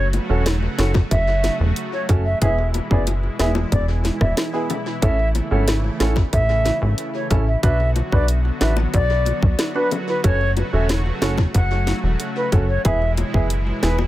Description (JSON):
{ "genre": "dancehall", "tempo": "92 BPM", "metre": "4/4", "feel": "straight", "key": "unclear", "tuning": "A4 = 438 Hz", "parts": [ { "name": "silver concert flute", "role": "melody", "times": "0.0-14.0 s", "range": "B4 to F#5", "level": "-25 LUFS", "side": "equal", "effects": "tape echo" }, { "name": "warm analog pad", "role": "sustained chords", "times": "0.0-14.1 s", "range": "B2 to F#4", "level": "-29 LUFS", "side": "right 1 dB", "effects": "chorus, tremolo, sidechain pumping" }, { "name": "plucky analog bass", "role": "bass", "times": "0.0-14.1 s", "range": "E1 to B1", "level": "-20 LUFS", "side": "equal", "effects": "none" }, { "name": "island pop drum kit", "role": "drums", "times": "0.1-14.0 s", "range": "hi-hat, kick drum, rim click, snare drum", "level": "-21 LUFS", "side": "equal", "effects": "tape echo" }, { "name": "bongos", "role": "percussion", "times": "0.1-14.1 s", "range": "none", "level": "-31 LUFS", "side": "left 6 dB", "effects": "tape echo" }, { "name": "warm concert grand piano", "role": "accompaniment", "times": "0.3-14.0 s", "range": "B3 to B4", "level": "-27 LUFS", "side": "right 2 dB", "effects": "tape echo" } ], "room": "small room ambience", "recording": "echo-heavy mix", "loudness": "-17 LUFS", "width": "side -15 dB against mid", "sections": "0.0-14.1 A section", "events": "none", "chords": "0.0 F#m; 2.4 E; 5.0 A; 7.6 Bm; 10.2 F#m; 12.9 E" }